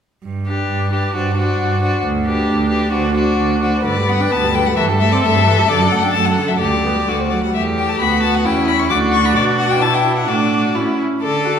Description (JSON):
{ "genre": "quick classical-period movement for string quartet", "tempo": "124-137 BPM", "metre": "2/4", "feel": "rubato", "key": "G major, D major from 7.5 s", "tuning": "A4 = 440 Hz", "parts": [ { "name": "clear cello", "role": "bass", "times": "0.2-11.6 s", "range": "D2 to D3", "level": "-19 LUFS", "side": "right 3 dB", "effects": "none" }, { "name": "rich violin", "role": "melody", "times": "0.5-11.6 s", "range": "B4 to D6", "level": "-20 LUFS", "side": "left 7 dB", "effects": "none" }, { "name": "rich violin", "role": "second line", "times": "0.5-11.6 s", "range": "D4 to B4", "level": "-20 LUFS", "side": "left 2 dB", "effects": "none" }, { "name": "rich viola", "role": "accompaniment", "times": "0.5-11.6 s", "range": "D3 to A4", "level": "-21 LUFS", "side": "right 2 dB", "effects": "none" } ], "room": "wet recital hall reverb, RT60 1.6 s", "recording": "recorded in a church or concert hall", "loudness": "-14 LUFS", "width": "side -8 dB against mid", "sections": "0.2-3.9 A section; 3.9-11.2 B section", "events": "none", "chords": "0.2 G; 2.0 G/D; 3.9 G; 4.8 Am7/G; 5.7 D/F#; 6.6 G/D; 7.1 D; 7.5 A5/E; 8.0 D; 8.4 C#dim/E; 8.9 D; 9.3 Bm; 10.3 D/A; 10.8 A (rootless)" }